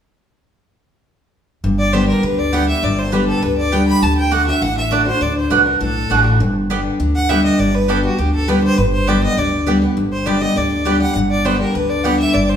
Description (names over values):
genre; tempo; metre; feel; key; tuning
bluegrass; 202 BPM; 4/4; straight; G major; A4 = 440 Hz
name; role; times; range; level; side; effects
picked steel-string acoustic guitar; accompaniment; 1.6-12.6 s; G2 to G4; -17 LUFS; left 1 dB; none
upright bass; bass; 1.6-12.6 s; G1 to D2; -21 LUFS; equal; none
clear fiddle; melody; 1.8-12.6 s; F#4 to B5; -20 LUFS; equal; none
mandolin; stabs; 1.9-12.1 s; A3 to G5; -21 LUFS; right 6 dB; none
room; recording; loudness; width
wet large studio reverb, RT60 1.4 s; heard from further back in the room; -14 LUFS; side -8 dB against mid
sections
1.6-12.6 A section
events
none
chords
1.6 G; 4.0 D; 6.4 G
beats
| 1.64 1.94 2.24 2.53 | 2.83 3.13 3.43 3.73 | 4.02 4.32 4.62 4.92 | 5.21 5.51 5.81 6.11 | 6.40 6.70 7.00 7.30 | 7.59 7.89 8.19 8.48 | 8.78 9.08 9.38 9.67 | 9.97 10.27 10.56 10.86 | 11.16 11.46 11.75 12.05 | 12.35